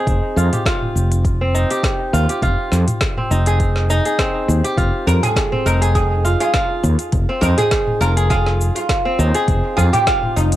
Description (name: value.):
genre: organic downtempo.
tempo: 102 BPM.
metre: 4/4.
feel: swing 55% on 16ths.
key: F minor.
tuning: A4 = 440 Hz.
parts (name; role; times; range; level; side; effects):
kora; arpeggios; 0.0-10.6 s; C4 to Ab4; -21 LUFS; equal; low-pass filter, cassette tape, analog delay, plate reverb.
fretless electric bass; bass; 0.1-10.6 s; F1 to F2; -16 LUFS; equal; analog chorus, sidechain pumping.
afro-pop drum kit; drums; 0.1-10.6 s; hi-hat, shaker, snare drum, toms; -23 LUFS; equal; cassette tape.
electronic kick drum; drums; 0.1-10.2 s; none; -21 LUFS; equal; cassette tape.
oud; melody; 5.1-10.6 s; Eb4 to Bb4; -20 LUFS; right 2 dB; cassette tape, analog delay, plate reverb.
udu; percussion; 5.1-9.9 s; none; -24 LUFS; right 1 dB; none.
room: light reverb.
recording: home recording on cassette.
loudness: -14 LUFS.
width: side -14 dB against mid.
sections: 0.0-10.6 A section.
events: none.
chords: 0.1 Eb6/F.